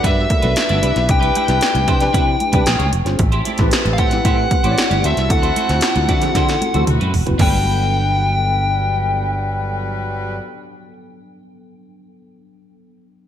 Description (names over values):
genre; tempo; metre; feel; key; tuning
polished 1980s jazz-funk pop; 114 BPM; 4/4; straight; G major; A4 = 440 Hz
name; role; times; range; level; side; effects
bluesy overdriven lead guitar; melody; 0.0-10.4 s; E5 to G5; -20 LUFS; left 2 dB; distortion, ping-pong delay
warm horn section; second line; 0.0-10.4 s; F#3 to B4; -29 LUFS; left 1 dB; none
tine electric piano; accompaniment; 0.0-13.3 s; F#3 to D5; -24 LUFS; left 1 dB; ensemble chorus
electric guitar at the edge of break-up; riff; 0.0-10.9 s; C4 to D5; -27 LUFS; right 3 dB; analog chorus
sustaining fretless electric bass; bass; 0.0-10.4 s; E1 to D3; -19 LUFS; equal; none
punchy analog drum machine; drums; 0.0-7.5 s; crash cymbal, hi-hat, kick drum, snare drum, toms; -19 LUFS; equal; gated reverb
congas; percussion; 0.0-7.6 s; none; -30 LUFS; right 3 dB; none
room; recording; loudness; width
light reverb; bright 1980s-style digital production; -14 LUFS; side -10 dB against mid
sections
0.0-7.4 A section; 7.4-11.6 B section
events
drum fill 6.3-7.4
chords
0.0 Gmaj7; 0.8 Cmaj9; 2.7 Bbm7; 3.2 Am7; 5.0 D9; 6.9 D13; 7.4 Gmaj7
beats
0.04 0.57 | 1.09 1.62 2.14 2.67 | 3.19 3.72 4.25 4.77 | 5.30 5.82 6.35 6.87 | 7.40 7.92 8.45 8.97 | 9.50 10.03 10.55 11.08